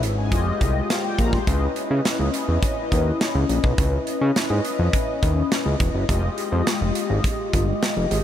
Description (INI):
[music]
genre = early-eighties boogie funk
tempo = 104 BPM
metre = 4/4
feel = straight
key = unclear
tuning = A4 = 440 Hz
[part]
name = mellow synth brass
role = accompaniment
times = 0.0-8.2 s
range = Ab3 to C6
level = -25 LUFS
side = left 3 dB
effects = chorus, phaser
[part]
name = fat analog bass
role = bass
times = 0.0-8.2 s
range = Fb1 to Db3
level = -21 LUFS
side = equal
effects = none
[part]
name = modern studio drum kit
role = drums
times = 0.0-8.2 s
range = hi-hat, kick drum, snare drum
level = -24 LUFS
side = equal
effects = none
[sound]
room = light reverb, small room ambience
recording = none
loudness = -19 LUFS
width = side -10 dB against mid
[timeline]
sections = 0.0-1.5 A section; 1.5-8.2 B section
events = none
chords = 0.3 Fm9; 1.5 Dbm9; 6.1 Fm9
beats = 0.32 0.90 | 1.47 2.05 2.63 3.20 | 3.78 4.36 4.93 5.51 | 6.09 6.67 7.24 7.82